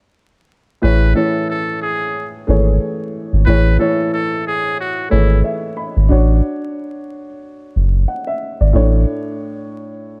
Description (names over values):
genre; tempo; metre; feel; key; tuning
hip hop, boom-bap hip-hop; 91 BPM; 4/4; swing 56% on 16ths; A major; A4 = 441 Hz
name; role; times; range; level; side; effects
trumpet with metal mute; melody; 0.8-5.4 s; E4 to B4; -23 LUFS; equal; high-pass filter, low-pass filter
dark upright piano; accompaniment; 0.8-10.2 s; A2 to B5; -22 LUFS; equal; cassette tape, high-pass filter, low-pass filter
round analog bass; bass; 0.8-9.1 s; F#1 to A1; -14 LUFS; equal; none
room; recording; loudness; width
studio ambience; vinyl crackle; -17 LUFS; mono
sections
0.8-10.2 A section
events
stop 0.0-0.8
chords
0.0 N.C.; 0.8 Amaj7; 6.1 Dmaj7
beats
0.17 | 0.83 1.49 2.15 2.81 | 3.47 4.13 4.79 5.45 | 6.11 6.76 7.42 8.08 | 8.74 9.40 10.06